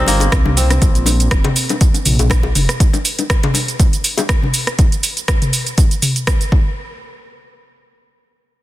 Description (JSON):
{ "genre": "afro house", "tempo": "121 BPM", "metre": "4/4", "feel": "swing 55% on 16ths", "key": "unclear", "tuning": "A4 = 440 Hz", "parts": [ { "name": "kora", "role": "arpeggios", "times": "0.0-2.4 s", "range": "G3 to Bb4", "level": "-21 LUFS", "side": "equal", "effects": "sidechain pumping, dub echo" }, { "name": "dark detuned saw bass", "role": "bass", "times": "0.0-2.7 s", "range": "F1 to C2", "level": "-16 LUFS", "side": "equal", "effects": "sidechain pumping" }, { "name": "afro-pop drum kit", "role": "drums", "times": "0.1-6.5 s", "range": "hi-hat, rim click, shaker, toms", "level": "-18 LUFS", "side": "equal", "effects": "studio reverb, soft clipping on snare" }, { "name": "bongos", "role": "percussion", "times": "0.1-4.5 s", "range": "none", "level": "-23 LUFS", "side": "left 5 dB", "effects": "none" }, { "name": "electronic kick drum", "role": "drums", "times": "0.3-6.6 s", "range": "none", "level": "-14 LUFS", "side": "equal", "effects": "studio reverb" } ], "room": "digital ambience", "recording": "dense, heavily limited modern master", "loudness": "-12 LUFS", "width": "side -16 dB against mid", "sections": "0.0-6.8 A section; 6.8-8.6 B section", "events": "drop 0.0-6.8", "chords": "0.0 Cm7; 0.8 Bb5; 2.8 N.C.", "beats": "0.33 | 0.82 1.32 1.81 2.31 | 2.81 3.30 3.80 4.29 | 4.79 5.28 5.78 6.28" }